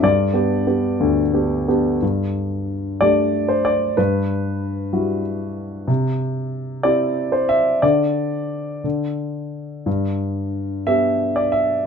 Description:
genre	classical, lyrical solo piano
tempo	58-63 BPM (dotted quarters)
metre	6/8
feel	rubato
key	G major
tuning	A4 = 440 Hz
part	warm concert grand piano	solo	0.0-11.9 s	D2 to E5	-18 LUFS	equal	none
room	light reverb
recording	dark, warm production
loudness	-18 LUFS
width	side -6 dB against mid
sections	0.0-2.0 A section; 2.0-11.9 B section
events	none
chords	0.0 G; 2.0 Gsus2; 4.0 Emadd9/G; 5.9 C; 7.8 N.C.; 9.9 G

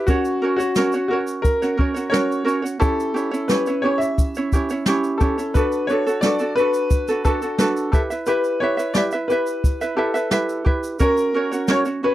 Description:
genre	acoustic pop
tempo	88 BPM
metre	4/4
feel	straight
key	B minor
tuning	A4 = 440 Hz
part	bright upright piano	melody	0.0-12.1 s	F#4 to E5	-22 LUFS	left 2 dB	none
part	ukulele	accompaniment	0.0-12.1 s	C#4 to E5	-22 LUFS	right 3 dB	none
part	jazz brush drum kit	drums	0.1-12.0 s	kick drum, shaker, snare drum	-21 LUFS	equal	none
room	light reverb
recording	dry, close 1970s-style studio recording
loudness	-18 LUFS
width	side -14 dB against mid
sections	0.0-12.1 A section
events	none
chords	0.1 F#; 2.8 C#dim; 5.5 Bm7; 7.9 Em; 11.0 F#

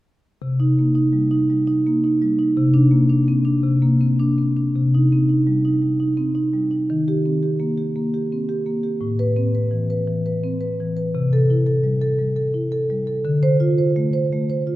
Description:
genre	classical, contemporary piece for solo marimba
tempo	113 BPM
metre	4/4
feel	rubato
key	C minor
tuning	A4 = 440 Hz
part	marimba with soft mallets	solo	0.4-14.8 s	A2 to C5	-17 LUFS	equal	none
room	wet recital hall reverb, RT60 1.4 s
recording	none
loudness	-17 LUFS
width	side -16 dB against mid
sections	0.4-4.7 A section; 4.7-14.8 B section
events	none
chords	0.4 Cm7; 2.6 Bbadd9/C; 4.7 Cm; 6.9 Eb6; 9.0 Amadd9; 11.1 C6; 13.2 Dm7

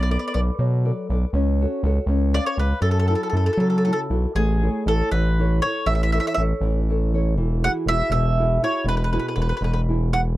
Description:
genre	italian folk, Italian serenade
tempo	80 BPM (dotted quarters)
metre	6/8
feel	rubato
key	F# minor, A major from 4.4 s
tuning	A4 = 440 Hz
part	mandolin	melody	0.0-10.2 s	G#4 to F#5	-24 LUFS	right 1 dB	none
part	nylon-string guitar	accompaniment	0.0-10.3 s	B2 to E#5	-27 LUFS	equal	none
part	gritty driven synth bass	bass	0.0-10.4 s	E1 to F#3	-20 LUFS	equal	distortion
room	little or no reverb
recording	dark, warm production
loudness	-19 LUFS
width	side -16 dB against mid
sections	0.0-4.4 A section; 4.4-10.4 B section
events	none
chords	0.0 Bm7; 1.3 F#m/C#; 2.1 C#7; 2.8 F#m7; 4.4 A; 7.4 Eadd9

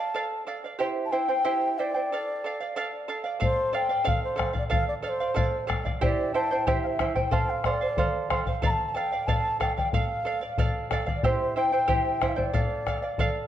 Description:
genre	andean folk, Andean ensemble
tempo	92 BPM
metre	2/4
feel	straight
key	D minor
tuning	A4 = 440 Hz
part	mellow large quena	melody	0.0-13.5 s	C5 to Bb5	-28 LUFS	left 1 dB	none
part	charango	accompaniment	0.0-13.5 s	E4 to G5	-29 LUFS	right 4 dB	none
part	bombo	percussion	3.4-13.3 s	none	-28 LUFS	left 2 dB	none
room	moderate recital hall reverb, RT60 1.7 s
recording	dark, warm production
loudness	-24 LUFS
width	side -11 dB against mid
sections	0.0-3.4 A section; 3.4-13.5 A section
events	none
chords	0.0 Dm; 0.8 C; 2.1 Dm; 6.0 C; 7.3 F; 8.6 Dm; 11.2 C; 12.5 Dm

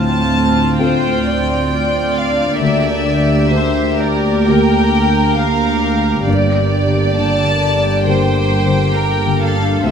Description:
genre	cinematic, emotional film score for orchestra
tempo	66 BPM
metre	4/4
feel	rubato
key	unclear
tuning	A4 = 438 Hz
part	warm studio violin section	melody	0.0-9.9 s	D5 to A5	-21 LUFS	left 4 dB	none
part	dark concert grand piano	accompaniment	0.0-9.9 s	D2 to Bb4	-22 LUFS	left 2 dB	none
part	warm studio viola section	accompaniment	0.0-9.9 s	Bb3 to G4	-20 LUFS	right 4 dB	none
part	concert harp	arpeggios	0.0-9.9 s	G2 to G4	-21 LUFS	left 7 dB	none
part	warm chamber double bass section	bass	0.0-9.9 s	G1 to D2	-22 LUFS	right 3 dB	none
part	warm studio cello section	bass	0.0-9.9 s	D2 to G2	-20 LUFS	right 2 dB	none
part	rich studio violin section	second line	0.8-9.9 s	A4 to D5	-20 LUFS	right 1 dB	none
room	wet recital hall reverb, RT60 1.7 s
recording	none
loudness	-12 LUFS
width	side -7 dB against mid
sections	0.0-9.9 A section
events	none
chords	0.0 Dm7; 2.6 Bb6/D; 6.3 Gmadd9

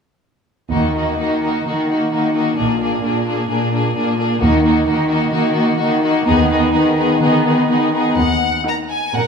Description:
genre	quick classical-period movement for symphony orchestra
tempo	128 BPM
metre	4/4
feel	rubato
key	Eb minor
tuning	A4 = 442 Hz
part	clear chamber violin section	melody	0.7-9.3 s	Gb4 to Bb5	-22 LUFS	left 4 dB	none
part	rich chamber violin section	second line	0.7-9.3 s	D4 to Bb4	-21 LUFS	left 1 dB	none
part	rich studio viola section	accompaniment	0.7-9.0 s	Bb3 to Eb4	-19 LUFS	left 1 dB	none
part	bright chamber double bass section	bass	0.7-8.6 s	Bb1 to Eb2	-22 LUFS	right 4 dB	none
part	warm chamber cello section	bass	0.7-9.3 s	Eb2 to Eb3	-19 LUFS	equal	none
room	wet scoring stage reverb, RT60 1.7 s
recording	minimal, uncompressed stereo recording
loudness	-14 LUFS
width	side -6 dB against mid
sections	0.7-8.2 A section; 8.2-9.3 B section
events	none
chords	0.7 Ebm; 2.6 Bb7; 4.4 Ebm; 6.3 Abm/Eb; 8.2 Ebm

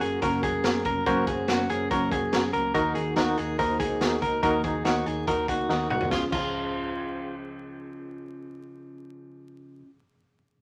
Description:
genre	jangly indie pop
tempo	142 BPM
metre	4/4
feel	straight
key	Db major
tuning	A4 = 440 Hz
part	fingerpicked plugged-in steel-string acoustic guitar	accompaniment	0.0-9.9 s	Gb2 to Gb4	-34 LUFS	equal	none
part	reed electric piano	accompaniment	0.0-10.6 s	Db4 to Bb5	-33 LUFS	equal	fast tremolo
part	direct-recorded clean electric guitar	arpeggios	0.0-7.3 s	F4 to Bb4	-31 LUFS	equal	none
part	vintage muted picked electric bass	bass	0.0-9.8 s	F1 to Eb2	-40 LUFS	equal	none
part	raw garage drum kit	drums	0.0-6.4 s	crash cymbal, hi-hat, kick drum, snare drum, toms	-33 LUFS	equal	none
room	light reverb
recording	vinyl crackle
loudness	-26 LUFS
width	mono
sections	0.0-6.1 A section; 6.1-9.5 B section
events	reed electric piano fill 2.1-2.7; drum fill 5.7-6.1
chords	0.0 Gb; 2.7 Ebm; 6.1 Db

